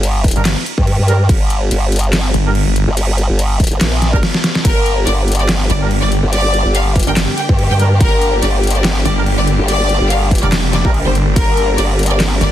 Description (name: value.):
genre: heavy wobble dubstep.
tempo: 143 BPM.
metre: 4/4.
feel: swing 55% on 16ths, half-time.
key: G minor.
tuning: A4 = 440 Hz.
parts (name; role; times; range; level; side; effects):
formant-sweep wobble bass; bass; 0.0-12.4 s; G1 to G2; -15 LUFS; equal; chorus, overdrive.
dubstep drum kit; drums; 0.0-12.5 s; crash cymbal, handclaps, hi-hat, snare drum; -20 LUFS; equal; overdrive.
electronic kick drum; drums; 0.2-11.5 s; none; -14 LUFS; equal; overdrive.
clear brass ensemble; stabs; 0.4-10.9 s; G3 to Bb4; -24 LUFS; right 4 dB; dub echo.
snarling distorted saw bass; bass; 0.4-2.9, 5.7-12.5 s; F1 to G1; -14 LUFS; equal; overdrive.
clear studio violin section; melody; 4.6-12.5 s; Bb4 to G5; -19 LUFS; left 1 dB; dub echo.
clear studio string section; sustained chords; 4.6-12.5 s; D3 to Bb4; -22 LUFS; left 1 dB; sidechain pumping.
room: digital ambience.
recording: dense, heavily limited modern master.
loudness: -12 LUFS.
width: side -12 dB against mid.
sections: 0.0-12.5 A section.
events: kick drops out 4.2-4.6; drum fill 4.2-4.6.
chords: 0.0 Gm.